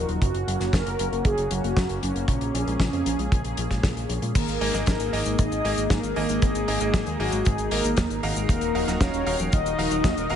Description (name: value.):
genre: italo disco.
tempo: 116 BPM.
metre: 4/4.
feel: straight.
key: unclear.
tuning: A4 = 440 Hz.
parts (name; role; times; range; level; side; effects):
mellow synth brass; melody; 0.0-10.4 s; Gb3 to Eb5; -28 LUFS; equal; chorus, ping-pong delay.
lush unison pad; sustained chords; 0.0-10.4 s; Eb3 to F5; -32 LUFS; left 1 dB; chorus, phaser, vintage 12-bit sampler grit.
fat analog bass; bass; 0.0-10.4 s; Eb1 to Bb2; -29 LUFS; equal; tube saturation.
soft round pluck; arpeggios; 0.1-10.4 s; Db3 to Eb4; -34 LUFS; left 2 dB; wide subtle chorus, cassette tape.
damped 70s drum kit; drums; 0.1-10.4 s; cabasa, crash cymbal, hi-hat, snare drum; -30 LUFS; left 2 dB; gated reverb.
kick drum; drums; 0.2-10.1 s; none; -22 LUFS; equal; none.
bright concert grand piano; stabs; 4.6-10.4 s; Bb3 to F5; -31 LUFS; right 4 dB; none.
room: light reverb.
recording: nothing above 10.7 kHz.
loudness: -22 LUFS.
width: side -9 dB against mid.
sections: 0.0-4.4 A section; 4.4-10.4 B section.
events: none.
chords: 0.2 Gb; 2.3 Bbm7; 4.4 Absus2; 8.5 Ebmadd9.